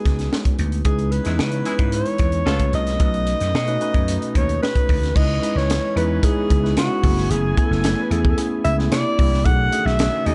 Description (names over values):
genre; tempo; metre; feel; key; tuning
polished 1980s jazz-funk pop; 112 BPM; 4/4; straight; C# minor; A4 = 440 Hz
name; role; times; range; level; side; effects
breathy alto saxophone; melody; 0.0-10.3 s; F#4 to F#5; -26 LUFS; equal; none
tine electric piano; accompaniment; 0.0-10.3 s; D#3 to G#5; -27 LUFS; equal; subtle chorus
vintage slap bass; bass; 0.1-10.3 s; F#1 to C#3; -24 LUFS; equal; none
crisp fusion drum kit; drums; 0.1-10.3 s; crash cymbal, hi-hat, kick drum, snare drum; -24 LUFS; equal; none
muted studio string section; sustained chords; 0.9-10.3 s; B2 to G#5; -35 LUFS; equal; none
warm horn section; second line; 1.2-2.6 s; G#3 to A4; -36 LUFS; equal; delay
room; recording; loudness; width
light reverb, small room ambience; dark, warm production, nothing above 11.0 kHz; -19 LUFS; mono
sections
0.0-5.2 A section; 5.2-10.3 B section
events
none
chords
0.0 G#m7; 0.9 C#m9; 2.5 C#7b13; 3.0 B7; 5.2 C#m9; 7.0 F#m11; 8.9 C9; 9.5 B13